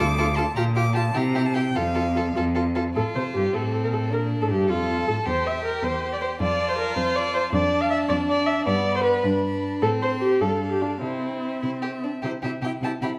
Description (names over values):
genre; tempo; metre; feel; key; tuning
quick classical-period movement for string quartet; 98-107 BPM (dotted quarters); 6/8; rubato; F major, C major from 7.5 s; A4 = 435 Hz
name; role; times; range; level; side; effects
clear violin; melody; 0.0-13.1 s; F4 to D6; -36 LUFS; equal; none
clear violin; second line; 0.0-13.1 s; B3 to A4; -32 LUFS; equal; none
warm viola; accompaniment; 0.0-13.1 s; C4 to F5; -27 LUFS; equal; none
clear cello; bass; 0.0-13.1 s; D2 to C3; -29 LUFS; equal; none
room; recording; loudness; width
wet recital hall reverb, RT60 1.6 s; none; -24 LUFS; mono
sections
0.0-3.0 A section; 3.0-12.2 A section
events
none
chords
0.0 Dm; 0.6 Gm7/Bb; 1.2 C7; 1.8 F; 4.1 Gm7; 5.3 C7/E; 6.4 F; 8.7 G; 9.8 Am; 10.4 G5; 11.0 C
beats
0.00 | 0.57 1.16 | 1.75 2.36 | 2.96 3.55 | 4.12 4.71 | 5.27 5.84 | 6.41 6.97 | 7.54 8.10 | 8.67 9.25 | 9.83 10.42 | 11.02 11.63 | 12.23 12.82